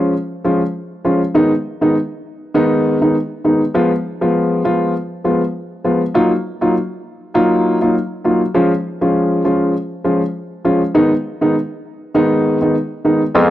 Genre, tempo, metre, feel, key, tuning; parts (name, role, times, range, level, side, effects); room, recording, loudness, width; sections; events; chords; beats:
dancehall; 100 BPM; 4/4; swing 56% on 16ths; A4 = 440 Hz
dark grand piano; accompaniment; 0.0-13.5 s; Eb3 to F4; -14 LUFS; equal
warm bassoon; bass; 13.3-13.5 s; F2; -11 LUFS; right 1 dB
light reverb; dry, gritty hardware recording, transformer saturation; -14 LUFS; side -13 dB against mid
0.0-13.3 A section
0.0 Db; 1.3 Abm; 3.7 Fdim; 6.1 Ebmadd9; 8.5 Db; 10.9 Abm
0.15 0.75 | 1.35 1.95 2.55 3.15 | 3.75 4.35 4.95 5.55 | 6.15 6.75 7.35 7.95 | 8.55 9.15 9.75 10.35 | 10.95 11.55 12.15 12.75 | 13.35